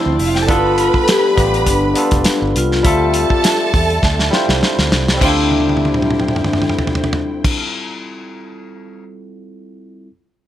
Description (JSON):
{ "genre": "lush 1970s-style soul", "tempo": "102 BPM", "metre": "4/4", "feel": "swing 54% on 16ths", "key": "D dorian", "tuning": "A4 = 441 Hz", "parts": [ { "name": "vibraphone with soft mallets", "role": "melody", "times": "0.0-7.5 s", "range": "D4 to A4", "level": "-18 LUFS", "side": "left 2 dB", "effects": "none" }, { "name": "barky tine electric piano", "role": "accompaniment", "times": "0.0-10.1 s", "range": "F3 to E5", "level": "-21 LUFS", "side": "right 1 dB", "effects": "overdrive, wide subtle chorus" }, { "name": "mellow French horn section", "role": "sustained chords", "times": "0.0-7.5 s", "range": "D3 to E5", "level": "-27 LUFS", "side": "right 2 dB", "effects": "none" }, { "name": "warm studio violin section", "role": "second line", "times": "0.1-7.5 s", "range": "C4 to B5", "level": "-22 LUFS", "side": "right 2 dB", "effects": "none" }, { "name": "vintage muted fingered electric bass", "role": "bass", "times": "0.1-7.5 s", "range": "F1 to E2", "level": "-20 LUFS", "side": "equal", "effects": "none" }, { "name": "warm soul drum kit", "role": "drums", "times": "0.2-9.0 s", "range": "crash cymbal, hi-hat, kick drum, snare drum, toms", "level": "-18 LUFS", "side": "equal", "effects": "none" } ], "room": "light reverb, small room ambience", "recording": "none", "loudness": "-13 LUFS", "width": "side -12 dB against mid", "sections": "0.0-5.2 A section; 5.2-7.6 B section", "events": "drum fill 4.0-5.2, 5.5-7.4", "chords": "0.5 G7; 2.8 Dm11" }